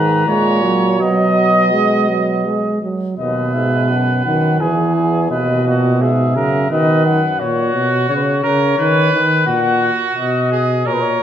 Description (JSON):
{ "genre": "classical, imitative canzona for brass ensemble", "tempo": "85 BPM", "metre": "3/4", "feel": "straight", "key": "B major", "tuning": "A4 = 445 Hz", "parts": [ { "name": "mellow cornet", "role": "melody", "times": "0.0-11.2 s", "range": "B4 to A#5", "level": "-19 LUFS", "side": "left 6 dB", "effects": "none" }, { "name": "clear trumpet", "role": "second line", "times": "0.0-11.2 s", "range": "F#4 to D#5", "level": "-19 LUFS", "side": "right 4 dB", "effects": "none" }, { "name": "mellow trombone", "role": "accompaniment", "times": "0.0-11.2 s", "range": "A#2 to G#3", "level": "-16 LUFS", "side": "right 2 dB", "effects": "none" }, { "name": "clear euphonium", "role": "bass", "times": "0.0-7.4 s", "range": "D#2 to B2", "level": "-22 LUFS", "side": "right 2 dB", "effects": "none" } ], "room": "wet recital hall reverb, RT60 1.5 s", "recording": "none", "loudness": "-13 LUFS", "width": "side -9 dB against mid", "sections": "0.0-3.2 A section; 3.2-11.2 B section", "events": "none", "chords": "0.3 F#/A#; 1.0 B; 3.2 B/D#; 4.6 E; 5.3 B/D#; 6.7 B; 7.4 F#/A#; 8.8 B/D#; 9.5 F#/A#" }